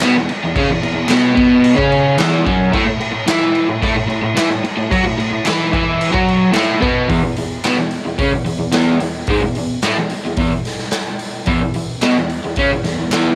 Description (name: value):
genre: garage rock duo or trio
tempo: 110 BPM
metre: 4/4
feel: straight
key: unclear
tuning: A4 = 440 Hz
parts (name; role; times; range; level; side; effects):
- crunchy overdriven guitar; riff; 0.0-13.4 s; E2 to F#4; -17 LUFS; equal; none
- raw garage drum kit; drums; 0.0-13.3 s; crash cymbal, hi-hat, kick drum, snare drum; -22 LUFS; equal; cassette tape
- group handclap; percussion; 0.0-13.2 s; none; -28 LUFS; equal; none
room: light reverb, small room ambience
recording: home recording on cassette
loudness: -16 LUFS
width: mono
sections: 0.0-7.1 A section; 7.1-13.4 B section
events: none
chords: 0.0 E5; 2.7 A5; 7.1 N.C.